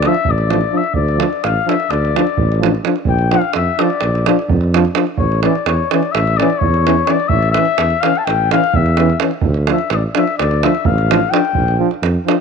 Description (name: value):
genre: balkan folk, Balkan brass band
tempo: 254 BPM (eighths)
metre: 9/8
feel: straight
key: D harmonic minor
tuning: A4 = 440 Hz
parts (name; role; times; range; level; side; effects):
- warm flugelhorn; second line; 0.0-11.8 s; C#5 to A5; -18 LUFS; left 9 dB; none
- mellow euphonium; accompaniment; 0.0-12.4 s; C#4 to D4; -21 LUFS; left 13 dB; none
- mellow tuba; bass; 0.0-12.2 s; A1 to F2; -17 LUFS; right 1 dB; none
- davul; percussion; 0.0-12.4 s; none; -20 LUFS; right 8 dB; none
- clear trombone; accompaniment; 0.1-12.4 s; E3 to F3; -20 LUFS; right 13 dB; none
room: light reverb, studio ambience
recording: 1960s-style stereo with parts hard left and right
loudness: -13 LUFS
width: side -6 dB against mid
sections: 0.0-12.4 A section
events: flugelhorn solo 0.0-12.4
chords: 0.0 Dm; 3.1 Bb; 5.2 A; 9.4 Dm; 11.6 Bb